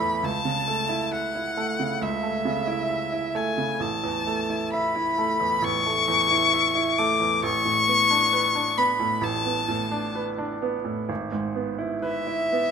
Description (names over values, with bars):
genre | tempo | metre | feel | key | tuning
classical, romantic duo for violin and grand piano | 66 BPM | 4/4 | uneven beats, rubato | A major | A4 = 441 Hz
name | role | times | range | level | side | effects
clear violin | melody | 0.0-12.7 s | E5 to D6 | -23 LUFS | left 4 dB | none
bright baby grand piano | accompaniment | 0.0-12.7 s | G#1 to E5 | -26 LUFS | right 4 dB | none
room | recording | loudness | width
moderate recital hall reverb, RT60 1.4 s | close, detailed microphones | -22 LUFS | side -6 dB against mid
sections
0.0-12.7 A section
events
none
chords
0.3 A/C#; 3.8 A; 7.4 Bm7/A; 11.1 E/G#